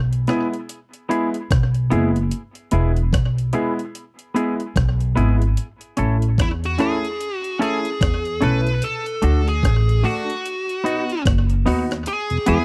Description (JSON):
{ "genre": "roots reggae", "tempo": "74 BPM", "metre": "4/4", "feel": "swing 60% on 16ths", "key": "E major", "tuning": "A4 = 443 Hz", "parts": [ { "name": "upright bass", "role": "bass", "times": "0.0-12.6 s", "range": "E1 to E2", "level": "-21 LUFS", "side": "equal", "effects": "none" }, { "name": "breakbeat sampler-style drum kit", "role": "drums", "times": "0.1-12.6 s", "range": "hi-hat, kick drum, rim click", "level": "-25 LUFS", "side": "equal", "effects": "slapback echo" }, { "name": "semi-hollow electric guitar", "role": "accompaniment", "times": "0.3-12.6 s", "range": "A3 to A4", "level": "-27 LUFS", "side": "equal", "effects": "tape echo" }, { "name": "warm grand piano", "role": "stabs", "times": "0.3-12.6 s", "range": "G#3 to G#4", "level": "-27 LUFS", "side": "equal", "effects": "none" }, { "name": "high-gain lead guitar", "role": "melody", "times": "6.4-12.6 s", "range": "E4 to B4", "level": "-27 LUFS", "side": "equal", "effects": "distortion, tape echo" }, { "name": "mellow tonewheel organ", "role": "accompaniment", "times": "12.3-12.6 s", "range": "E2 to B3", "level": "-23 LUFS", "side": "equal", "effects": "slow rotary speaker" } ], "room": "little or no reverb", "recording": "dry, close 1970s-style studio recording", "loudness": "-21 LUFS", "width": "mono", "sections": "0.0-12.1 A section", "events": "none", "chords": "0.0 E; 5.6 A; 8.8 D; 10.4 B; 12.1 E" }